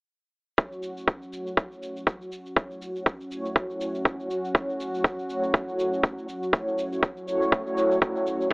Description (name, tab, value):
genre	afro house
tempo	121 BPM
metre	4/4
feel	swing 57% on 16ths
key	F# minor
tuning	A4 = 440 Hz
part	warm analog pad	sustained chords	0.6-8.5 s	F#3 to F#4	-33 LUFS	equal	chorus, vintage 12-bit sampler grit, sidechain pumping
part	mellow synth brass	stabs	0.6-8.5 s	A3 to C#5	-28 LUFS	equal	chorus, sidechain pumping, tape echo
part	electronic kick drum	drums	0.6-8.1 s	none	-22 LUFS	equal	none
part	shaker	drums	0.6-8.5 s	none	-49 LUFS	equal	none
room	light reverb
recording	dry, gritty hardware recording, telephone sound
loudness	-25 LUFS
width	side -37 dB against mid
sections	0.6-8.5 A section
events	filter sweep on analog polysynth 0.6-8.5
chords	0.6 F#m7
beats	| 0.58 1.07 1.57 2.07 | 2.56 3.06 3.56 4.05 | 4.55 5.04 5.54 6.03 | 6.53 7.03 7.52 8.02 | 8.51